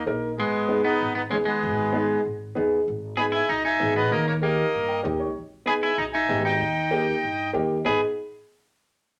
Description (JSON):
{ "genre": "latin", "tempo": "192 BPM", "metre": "4/4", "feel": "straight", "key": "G# harmonic minor", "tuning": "A4 = 444 Hz", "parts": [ { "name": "accordion", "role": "melody", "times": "0.0-8.0 s", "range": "G#3 to B5", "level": "-28 LUFS", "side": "equal", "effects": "none" }, { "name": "clean electric guitar", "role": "second line", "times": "0.0-8.0 s", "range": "G#3 to G#4", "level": "-29 LUFS", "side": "equal", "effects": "none" }, { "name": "dark upright piano", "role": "accompaniment", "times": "0.1-8.0 s", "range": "A#3 to G5", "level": "-28 LUFS", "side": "equal", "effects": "none" }, { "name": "upright bass", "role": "bass", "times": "0.1-8.0 s", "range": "G#1 to G2", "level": "-35 LUFS", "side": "equal", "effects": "none" } ], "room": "moderate studio reverb, RT60 0.7 s", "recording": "none", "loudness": "-24 LUFS", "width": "mono", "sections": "0.0-2.9 A section; 2.9-7.9 B section; 7.9-9.1 C section", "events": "upright piano fill 4.7-5.4", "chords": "0.4 G#m; 4.1 D#; 5.4 G#m; 6.6 D#; 7.9 G#m", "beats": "0.06 | 0.37 0.69 1.00 1.31 | 1.62 1.93 2.24 2.56 | 2.87 3.18 3.49 3.80 | 4.11 4.43 4.74 5.05 | 5.36 5.67 5.99 6.30 | 6.61 6.92 7.23 7.54 | 7.86" }